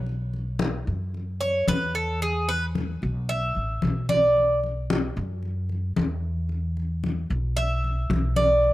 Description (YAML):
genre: latin, Cuban son and guajira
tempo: 112 BPM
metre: 4/4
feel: straight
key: unclear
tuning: A4 = 440 Hz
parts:
  - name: upright bass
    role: bass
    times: 0.0-8.7 s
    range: A1 to F#2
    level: -27 LUFS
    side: equal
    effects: none
  - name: congas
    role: percussion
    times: 0.1-8.7 s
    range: none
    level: -29 LUFS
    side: left 3 dB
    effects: none
  - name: Cuban tres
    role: arpeggios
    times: 1.4-8.7 s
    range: G#4 to E5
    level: -23 LUFS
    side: right 1 dB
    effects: none
room: little or no reverb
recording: none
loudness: -23 LUFS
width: side -16 dB against mid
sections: 0.0-8.7 A section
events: Cuban tres solo 0.0-8.7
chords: 0.1 B5; 2.2 E5; 4.4 B5; 6.5 E5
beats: | 0.07 0.61 1.15 1.68 | 2.22 2.75 3.29 3.82 | 4.36 4.89 5.43 5.97 | 6.50 7.04 7.57 8.11 | 8.64